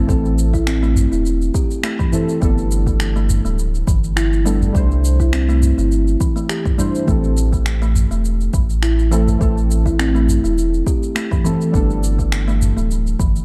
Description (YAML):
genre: organic downtempo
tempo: 103 BPM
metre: 4/4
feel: swing 55% on 16ths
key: A minor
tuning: A4 = 440 Hz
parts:
  - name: deep mellow chord stab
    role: accompaniment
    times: 0.0-13.4 s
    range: E3 to C5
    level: -26 LUFS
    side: equal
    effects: chorus, sidechain pumping, tape echo
  - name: warm sub bass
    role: bass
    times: 0.0-13.4 s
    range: D1 to C2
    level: -19 LUFS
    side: equal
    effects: sidechain pumping
  - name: kalimba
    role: arpeggios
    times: 0.1-13.3 s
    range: E3 to A4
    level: -24 LUFS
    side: equal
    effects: tape echo
  - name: electronic kick drum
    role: drums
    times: 0.1-13.3 s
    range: none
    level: -21 LUFS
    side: equal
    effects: overdrive, small room ambience
  - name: electronic shaker and finger snaps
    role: drums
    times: 0.1-13.4 s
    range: none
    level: -30 LUFS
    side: equal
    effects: overdrive, small room ambience
  - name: udu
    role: percussion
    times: 1.0-13.3 s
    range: none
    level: -27 LUFS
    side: equal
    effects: none
room: light reverb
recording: dark, warm production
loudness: -17 LUFS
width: mono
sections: 0.0-13.4 A section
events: none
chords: 0.0 Am; 2.4 Gadd9; 4.7 Cadd9; 7.1 Am; 11.7 Gadd9